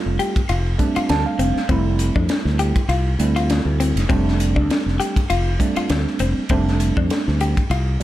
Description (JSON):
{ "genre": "electric jazz fusion", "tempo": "100 BPM", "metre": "4/4", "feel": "swing 56% on 16ths", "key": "F major", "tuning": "A4 = 440 Hz", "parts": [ { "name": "tine electric piano", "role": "accompaniment", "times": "0.0-8.0 s", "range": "G3 to A5", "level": "-23 LUFS", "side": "right 4 dB", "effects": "analog chorus" }, { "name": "modern bright fingered electric bass", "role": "bass", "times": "0.1-8.0 s", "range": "F1 to F2", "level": "-20 LUFS", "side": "equal", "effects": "none" }, { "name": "clean electric guitar", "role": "stabs", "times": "0.2-7.9 s", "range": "C4 to G4", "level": "-25 LUFS", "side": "left 5 dB", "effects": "lush chorus" }, { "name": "crisp fusion drum kit", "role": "drums", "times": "0.2-8.0 s", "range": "hi-hat, kick drum, ride cymbal, snare drum", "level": "-23 LUFS", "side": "equal", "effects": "none" } ], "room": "light reverb, small room ambience", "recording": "dark, warm production", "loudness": "-17 LUFS", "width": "side -14 dB against mid", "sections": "0.0-8.0 A section", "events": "tine electric piano fill 0.8-1.7", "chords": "0.0 F6" }